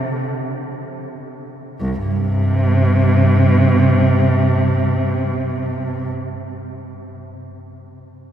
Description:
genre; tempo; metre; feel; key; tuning
classical, free, expressive piece for unaccompanied cello; free time; none; none; unclear; A4 = 438 Hz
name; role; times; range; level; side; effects
rich cello; solo; 0.0-6.1 s; C2 to C3; -16 LUFS; right 1 dB; none
room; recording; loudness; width
wet cathedral reverb, RT60 6.7 s; recorded in a church or concert hall; -14 LUFS; side -10 dB against mid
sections
0.0-1.8 A section; 1.8-5.9 B section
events
slowing down 0.0-1.8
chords
none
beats
free time

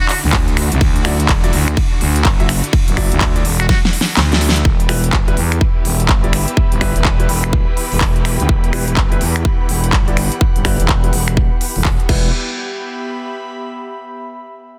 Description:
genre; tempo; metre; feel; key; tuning
bass house; 125 BPM; 4/4; swing 62% on 16ths; E minor; A4 = 440 Hz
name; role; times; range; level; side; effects
trumpet with metal mute; melody; 0.0-0.2, 3.6-3.8 s; F#4; -27 LUFS; equal; delay
warm studio string section; sustained chords; 0.0-12.3 s; D3 to B4; -30 LUFS; equal; sidechain pumping, low-pass filter
big-room dance drum kit; drums; 0.1-12.2 s; crash cymbal, finger snaps, handclaps, hi-hat, ride cymbal, snare drum; -22 LUFS; equal; soft clipping on snare
growling FM bass; bass; 0.2-12.3 s; E1 to E2; -19 LUFS; equal; overdrive, sidechain pumping
electronic kick drum; drums; 0.3-12.2 s; none; -18 LUFS; equal; none
clear grand piano; stabs; 1.1-12.3 s; F#3 to E5; -30 LUFS; equal; sidechain pumping, low-pass filter, delay
airy breathy pad; texture; 5.5-14.2 s; B3 to B5; -29 LUFS; equal; chorus, sidechain pumping
room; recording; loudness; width
small room ambience; dense, heavily limited modern master; -15 LUFS; mono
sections
0.0-4.7 A section; 4.7-12.3 B section; 12.3-14.2 C section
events
drop 0.0-4.7; drum fill 3.7-4.7; kick drops out 4.2-4.7; filter sweep on FM bass 4.7-12.3; filter sweep on grand piano 4.7-12.3; filter sweep on string section 4.7-12.3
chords
0.0 Dadd9; 4.7 Em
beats
0.33 | 0.81 1.29 1.77 2.25 | 2.73 3.21 3.69 4.17 | 4.65 5.13 5.61 6.09 | 6.57 7.05 7.53 8.01 | 8.49 8.97 9.45 9.93 | 10.41 10.89 11.37 11.85 | 12.33 12.81 13.29 13.77

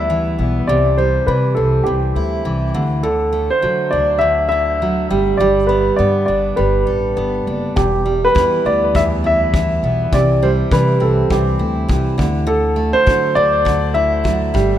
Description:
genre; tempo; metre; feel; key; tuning
acoustic pop; 102 BPM; 4/4; swing 60% on 16ths; unclear; A4 = 439 Hz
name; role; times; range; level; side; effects
warm upright piano; melody; 0.0-14.7 s; G4 to E5; -17 LUFS; equal; ping-pong delay
picked steel-string acoustic guitar; accompaniment; 0.0-14.8 s; E2 to A4; -19 LUFS; right 2 dB; none
upright bass; bass; 0.0-14.8 s; E1 to D3; -20 LUFS; equal; none
kick drum; drums; 7.8-14.7 s; none; -20 LUFS; left 1 dB; none
room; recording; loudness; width
moderate lush hall reverb, RT60 2.1 s; rough home demo mix; -14 LUFS; side -11 dB against mid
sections
0.0-14.8 A section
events
none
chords
0.0 Em; 0.7 C; 2.8 Dadd9; 5.1 Gadd9; 7.8 Em; 10.1 C; 12.2 Dadd9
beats
0.10 | 0.69 1.28 1.87 2.46 | 3.05 3.64 4.23 4.82 | 5.41 6.00 6.59 7.18 | 7.77 8.36 8.95 9.54 | 10.13 10.72 11.31 11.90 | 12.48 13.07 13.66 14.25

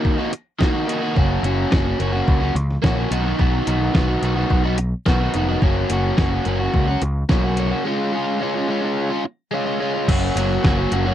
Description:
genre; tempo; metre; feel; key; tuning
indie rock; 108 BPM; 4/4; straight; F# major; A4 = 440 Hz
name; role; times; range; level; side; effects
overdriven electric guitar; riff; 0.0-11.1 s; D#3 to F#4; -20 LUFS; equal; none
detuned 8-bit digital drum machine; drums; 0.1-11.0 s; crash cymbal, hi-hat, kick drum, snare drum; -20 LUFS; equal; none
growling picked electric bass; bass; 1.2-11.1 s; E#1 to C#2; -22 LUFS; equal; overdrive
room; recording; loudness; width
little or no reverb; dry, close 1970s-style studio recording; -18 LUFS; side -11 dB against mid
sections
0.0-10.1 A section; 10.1-11.1 B section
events
break 7.9-10.1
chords
0.0 D#m; 1.2 F#; 3.1 B; 5.6 F#; 7.9 C#; 10.1 F#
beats
0.05 0.61 | 1.17 1.72 2.28 2.84 | 3.39 3.95 4.51 5.07 | 5.62 6.18 6.74 7.30 | 7.86 8.41 8.97 9.53 | 10.08 10.64

